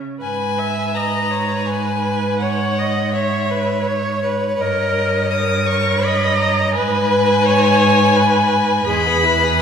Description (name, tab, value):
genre	classical, slow romantic movement for string quartet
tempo	83 BPM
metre	3/4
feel	rubato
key	G# minor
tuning	A4 = 439 Hz
part	rich violin	melody	0.2-9.6 s	D#5 to D#6	-20 LUFS	left 4 dB	none
part	clear violin	second line	0.2-9.6 s	G#3 to C#5	-22 LUFS	left 3 dB	none
part	rich viola	accompaniment	0.2-9.6 s	G#4 to E5	-20 LUFS	right 2 dB	none
part	rich cello	bass	0.2-9.6 s	E2 to G#2	-21 LUFS	right 3 dB	none
room	wet scoring stage reverb, RT60 1.9 s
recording	recorded in a church or concert hall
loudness	-15 LUFS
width	side -7 dB against mid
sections	0.2-9.6 A section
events	none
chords	0.2 G#m; 2.4 C#m/G#; 4.6 D#7/G; 6.8 G#m; 8.9 E